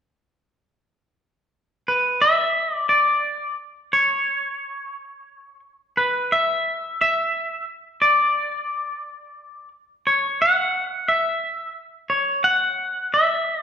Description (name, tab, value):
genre	rock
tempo	59 BPM (dotted quarters)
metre	6/8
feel	straight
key	unclear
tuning	A4 = 440 Hz
part	twangy electric guitar	melody	1.9-13.6 s	B4 to F#5	-19 LUFS	equal	none
room	wet large studio reverb, RT60 1.3 s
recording	band playing live in one room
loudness	-19 LUFS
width	side -8 dB against mid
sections	1.9-13.6 A section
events	none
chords	none